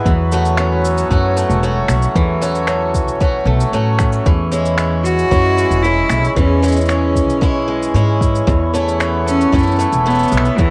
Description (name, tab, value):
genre	folktronica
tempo	114 BPM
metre	4/4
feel	straight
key	unclear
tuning	A4 = 442 Hz
part	hand-pumped harmonium	sustained chords	0.0-10.7 s	E3 to C#5	-25 LUFS	equal	cassette tape
part	picked swing-style acoustic guitar	arpeggios	0.0-10.7 s	E2 to F#4	-21 LUFS	equal	low-pass filter, cassette tape, tape echo
part	upright bass	bass	0.1-10.7 s	E1 to A2	-20 LUFS	equal	none
part	electronic cabasa and finger snaps	drums	0.1-10.7 s	none	-29 LUFS	equal	small room ambience, cassette tape
part	electronic kick drum	drums	0.1-10.7 s	none	-19 LUFS	equal	small room ambience, cassette tape
part	rich cello	melody	5.0-10.7 s	E3 to F#4	-20 LUFS	equal	cassette tape
room	light reverb, small room reverb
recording	home recording on cassette, vinyl crackle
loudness	-15 LUFS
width	mono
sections	0.0-10.7 A section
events	none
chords	0.0 F#m/E; 4.3 C#m/E; 8.5 Aadd9/E